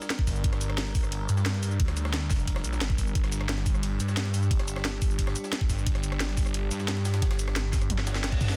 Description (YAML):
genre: dark technical drum and bass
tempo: 177 BPM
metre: 4/4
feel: straight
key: G minor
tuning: A4 = 442 Hz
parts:
  - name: metallic inharmonic drone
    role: sustained chords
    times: 0.0-8.6 s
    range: G3 to Bb4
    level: -41 LUFS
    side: equal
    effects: chorus, built-in reverb, sidechain pumping
  - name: drum and bass drum kit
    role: drums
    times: 0.0-8.6 s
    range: hi-hat, rim click, shaker, snare drum, toms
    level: -35 LUFS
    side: equal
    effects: none
  - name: jungle sampler-style drum kit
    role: drums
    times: 0.0-8.5 s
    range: ride cymbal, snare drum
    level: -45 LUFS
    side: equal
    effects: none
  - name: electronic kick drum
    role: drums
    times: 0.2-8.5 s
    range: none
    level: -29 LUFS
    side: equal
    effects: none
  - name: phased detuned saw bass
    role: bass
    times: 0.3-8.4 s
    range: F1 to G2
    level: -31 LUFS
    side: equal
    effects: phaser, overdrive
  - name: reverse cymbal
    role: sound effects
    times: 8.1-8.6 s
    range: none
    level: -40 LUFS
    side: equal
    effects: none
room: little or no reverb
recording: dense, heavily limited modern master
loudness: -28 LUFS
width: mono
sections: 0.0-8.6 A section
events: drum fill 7.9-8.6; reverse cymbal 8.1-8.6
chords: 0.0 Gm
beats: 0.10 | 0.44 0.78 1.12 1.46 | 1.80 2.14 2.48 2.81 | 3.15 3.49 3.83 4.17 | 4.51 4.85 5.19 5.53 | 5.87 6.20 6.54 6.88 | 7.22 7.56 7.90 8.24